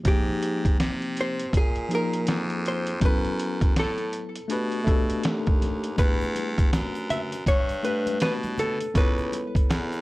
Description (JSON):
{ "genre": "hip hop, jazz-hop", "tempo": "81 BPM", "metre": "4/4", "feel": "swing 62% on 16ths", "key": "unclear", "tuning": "A4 = 440 Hz", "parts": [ { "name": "mellow tine electric piano", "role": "accompaniment", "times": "0.0-10.0 s", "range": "E#3 to C#5", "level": "-30 LUFS", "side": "left 2 dB", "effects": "medium stereo tremolo, plate reverb" }, { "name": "trip hop sampler-style drum kit", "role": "drums", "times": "0.0-10.0 s", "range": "hi-hat, kick drum, snare drum", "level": "-24 LUFS", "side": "equal", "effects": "none" }, { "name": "hollow-body jazz guitar", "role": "melody", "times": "0.1-10.0 s", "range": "G4 to E5", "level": "-30 LUFS", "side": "equal", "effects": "tape echo, plate reverb" }, { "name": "edgy baritone saxophone", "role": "bass", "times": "0.1-10.0 s", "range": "C#2 to B#2", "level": "-31 LUFS", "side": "equal", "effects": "none" }, { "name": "egg shaker and congas", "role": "percussion", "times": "6.0-10.0 s", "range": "none", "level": "-41 LUFS", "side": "right 1 dB", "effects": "none" } ], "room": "light reverb", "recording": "dark, warm production", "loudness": "-22 LUFS", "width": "side -19 dB against mid", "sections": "0.0-10.0 A section", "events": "none", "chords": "0.1 G#maj9; 3.0 F#m7; 4.5 B7alt; 6.0 Em9; 8.9 Aadd9/C#" }